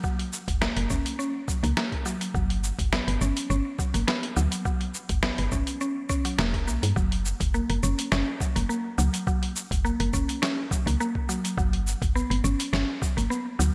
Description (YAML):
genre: organic downtempo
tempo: 104 BPM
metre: 4/4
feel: straight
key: F# phrygian dominant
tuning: A4 = 440 Hz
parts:
  - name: mallet-like synth pluck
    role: arpeggios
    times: 0.0-13.7 s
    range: F#3 to C#4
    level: -32 LUFS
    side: equal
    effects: chorus, vintage 12-bit sampler grit, delay
  - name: dusty soul sampler-style drum kit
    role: drums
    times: 0.0-13.7 s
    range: hi-hat, shaker, snare drum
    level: -34 LUFS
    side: equal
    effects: gated reverb
  - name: electronic kick drum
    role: drums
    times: 0.0-13.1 s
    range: none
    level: -31 LUFS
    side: equal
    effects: none
  - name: woody FM bass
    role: bass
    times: 0.5-13.7 s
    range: E1 to G2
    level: -29 LUFS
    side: equal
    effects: tube saturation, sidechain pumping
room: moderate plate reverb, RT60 2.8 s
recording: bright 1980s-style digital production, faint mains hum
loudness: -27 LUFS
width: mono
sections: 0.0-7.0 A section; 7.0-13.7 B section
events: none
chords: 0.0 F#; 2.3 G; 7.0 F#; 11.6 G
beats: | 0.04 0.62 1.19 1.77 | 2.35 2.92 3.50 4.08 | 4.65 5.23 5.81 6.38 | 6.96 7.54 8.12 8.69 | 9.27 9.85 10.42 11.00 | 11.58 12.15 12.73 13.31